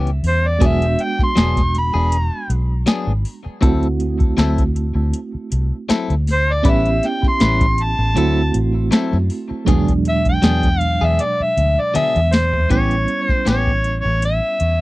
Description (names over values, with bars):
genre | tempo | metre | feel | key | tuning
straight-eighth soul blues | 79 BPM | 4/4 | swing 54% on 16ths | unclear | A4 = 439 Hz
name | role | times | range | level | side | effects
mellow reed electric piano | accompaniment | 0.0-14.8 s | B2 to G4 | -24 LUFS | right 4 dB | fast tremolo
clean electric guitar | stabs | 0.0-13.7 s | E3 to B4 | -24 LUFS | left 5 dB | tape echo
vintage muted fingered electric bass | bass | 0.0-14.8 s | E1 to F#2 | -18 LUFS | equal | none
soft vintage rhythm box | drums | 0.1-14.8 s | hi-hat, kick drum, snare drum, toms | -18 LUFS | equal | overdrive
overdriven harmonica | melody | 0.3-14.8 s | C5 to C6 | -19 LUFS | equal | none
room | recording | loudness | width
little or no reverb | dry, close 1970s-style studio recording | -15 LUFS | side -19 dB against mid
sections
0.0-12.7 A section; 12.7-14.8 B section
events
harmonica solo 0.0-12.7; drum fill 12.0-12.7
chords
0.0 A9 (rootless); 0.6 E9; 3.6 D9; 6.7 A9; 8.2 D9; 9.7 E9; 12.7 A9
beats
| 0.61 1.37 2.12 2.88 | 3.63 4.39 5.14 5.90 | 6.66 7.41 8.17 8.92 | 9.68 10.44 11.20 11.95 | 12.71 13.47 14.23